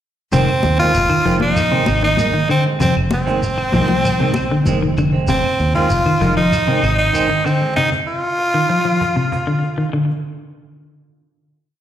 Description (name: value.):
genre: afrobeat.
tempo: 97 BPM.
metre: 4/4.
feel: straight.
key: F dorian.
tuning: A4 = 440 Hz.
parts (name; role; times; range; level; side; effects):
raspy tenor saxophone; melody; 0.3-9.9 s; C4 to F4; -18 LUFS; equal; slapback echo.
semi-hollow electric guitar; arpeggios; 0.3-10.1 s; C3 to F3; -20 LUFS; left 2 dB; slapback echo.
clean electric guitar; stabs; 0.3-7.8 s; Eb3 to C4; -24 LUFS; right 6 dB; warbly pitch drift, slapback echo.
fingered electric bass; bass; 0.3-7.1 s; F1 to F2; -20 LUFS; equal; none.
cajon; drums; 0.3-10.2 s; none; -28 LUFS; right 1 dB; none.
congas; percussion; 0.3-4.8 s; none; -24 LUFS; left 2 dB; slapback echo.
shekere; percussion; 0.3-7.6 s; none; -27 LUFS; right 1 dB; slapback echo.
claves; percussion; 0.5-7.6 s; none; -33 LUFS; left 2 dB; none.
room: moderate plate reverb, RT60 1.9 s, studio ambience.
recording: live gig heard through the venue's PA, recital hall reverb.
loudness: -14 LUFS.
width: side -10 dB against mid.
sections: 0.3-10.3 groove.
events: none.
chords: 0.3 Fm7.